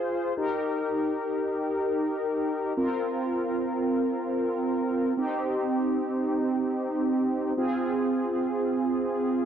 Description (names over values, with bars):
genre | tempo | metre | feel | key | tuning
pop | free time | none | none | Eb major | A4 = 437 Hz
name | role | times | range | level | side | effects
mellow synth brass | solo | 0.0-9.5 s | C4 to C5 | -25 LUFS | right 1 dB | chorus, slapback echo
room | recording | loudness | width
moderate lush hall reverb, RT60 2.3 s | dark, warm production | -25 LUFS | side -8 dB against mid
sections
0.0-9.5 A section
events
none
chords
0.4 Eb; 2.8 Bbsus2; 5.2 Cm; 7.6 Fm